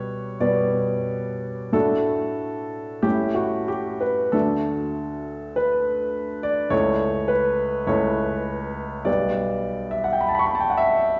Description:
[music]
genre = classical, romantic nocturne for solo piano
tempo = 45-53 BPM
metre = 4/4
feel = rubato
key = D major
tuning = A4 = 439 Hz
[part]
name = warm upright piano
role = solo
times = 0.0-11.2 s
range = B1 to C#6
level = -23 LUFS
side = equal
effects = none
[sound]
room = wet recital hall reverb, RT60 1.3 s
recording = heard from further back in the room, nothing above 7.6 kHz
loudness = -23 LUFS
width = mono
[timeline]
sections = 0.0-11.2 A section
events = none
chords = 0.0 G/B; 1.7 D/A; 3.0 A; 4.3 D; 6.7 A/C#; 9.1 G/B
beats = 0.41 1.74 3.04 | 4.34 5.57 6.72 7.89 | 9.07 10.23

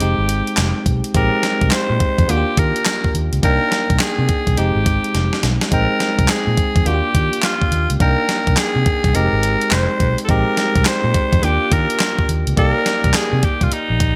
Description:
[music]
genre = R&B, new jack swing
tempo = 105 BPM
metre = 4/4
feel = swing 64% on 16ths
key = F dorian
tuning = A4 = 440 Hz
[part]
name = raspy alto saxophone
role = melody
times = 0.0-14.2 s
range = Eb4 to C5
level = -22 LUFS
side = equal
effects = none
[part]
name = bell-like tine electric piano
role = accompaniment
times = 0.0-14.2 s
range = Ab3 to G5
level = -25 LUFS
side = equal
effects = none
[part]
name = vintage muted fingered electric bass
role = bass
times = 0.0-14.1 s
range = F1 to Eb3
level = -22 LUFS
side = equal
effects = none
[part]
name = crisp 8-bit digital drum machine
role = drums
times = 0.0-14.2 s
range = handclaps, hi-hat, kick drum, snare drum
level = -21 LUFS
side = equal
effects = none
[sound]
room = light reverb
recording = bright 1980s-style digital production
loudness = -17 LUFS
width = mono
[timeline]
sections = 0.0-14.2 A section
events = drum fill 5.1-5.7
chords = 0.0 Fm9; 1.1 Bb13sus4; 2.3 Ebmaj9; 3.4 Cm9; 4.6 Fm9; 5.7 Bb13sus4; 6.9 Ebmaj9; 8.0 Cm9; 9.1 Fm9; 10.3 Bb13sus4; 11.4 Ebmaj9; 12.6 Cm9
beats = 0.00 0.57 | 1.15 1.72 2.29 2.86 | 3.43 4.00 4.57 5.14 | 5.72 6.29 6.86 7.43 | 8.00 8.57 9.14 9.72 | 10.29 10.86 11.43 12.00 | 12.57 13.14 13.72

